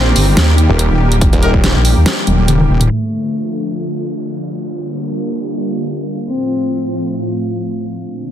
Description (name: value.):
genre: heavy wobble dubstep.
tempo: 142 BPM.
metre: 4/4.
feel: swing 54% on 16ths, half-time.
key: D phrygian.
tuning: A4 = 441 Hz.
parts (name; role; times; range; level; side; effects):
clear cello; melody; 0.0-0.3, 2.9-3.7, 6.3-7.1 s; A3 to C4; -22 LUFS; left 1 dB; ping-pong delay.
lush unison pad; sustained chords; 0.0-8.3 s; A2 to G4; -20 LUFS; equal; chorus, sidechain pumping.
wobble bass; bass; 0.0-2.9 s; Eb1 to Eb2; -11 LUFS; equal; chorus, overdrive.
dubstep drum kit; drums; 0.2-2.9 s; hi-hat, snare drum, toms; -16 LUFS; left 1 dB; overdrive, low-pass filter on hats, low-pass filter on snare, low-pass filter on toms, low-pass filter on room.
snarling distorted saw bass; bass; 0.7-1.7 s; Eb1; -14 LUFS; equal; distortion, overdrive.
electronic kick drum; drums; 1.2-1.6 s; none; -13 LUFS; equal; overdrive.
bright brass ensemble; stabs; 1.4-1.5 s; Eb4 to Bb4; -24 LUFS; left 4 dB; none.
downlifter; sound effects; 3.0-6.3 s; none; -33 LUFS; equal; none.
room: light reverb.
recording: dense, heavily limited modern master, low-pass filter.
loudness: -13 LUFS.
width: side -11 dB against mid.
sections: 0.0-2.9 A section; 2.9-8.3 B section.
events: drop 0.0-2.9; drum fill 2.3-2.9; filter sweep on analog synth pad 2.9-8.3; filter sweep 2.9-8.3.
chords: 0.0 Eb; 2.9 Dm; 4.6 Gm7; 6.3 F/A.